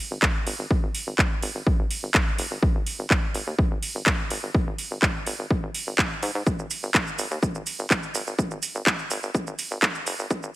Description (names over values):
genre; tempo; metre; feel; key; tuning
melodic techno; 125 BPM; 4/4; straight; unclear; A4 = 439 Hz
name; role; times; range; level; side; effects
tight sequencer bass; bass; 0.1-10.5 s; F#1 to G#2; -31 LUFS; equal; sidechain pumping, high-pass filter
electronic kick drum; drums; 0.2-10.4 s; none; -24 LUFS; equal; overdrive
house drum kit; drums; 0.2-10.5 s; handclaps, hi-hat, shaker; -25 LUFS; right 1 dB; none
room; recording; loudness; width
light reverb; high-pass filter; -22 LUFS; side -17 dB against mid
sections
0.0-10.6 A section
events
build-up 0.0-10.6; filter sweep 0.0-10.6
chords
none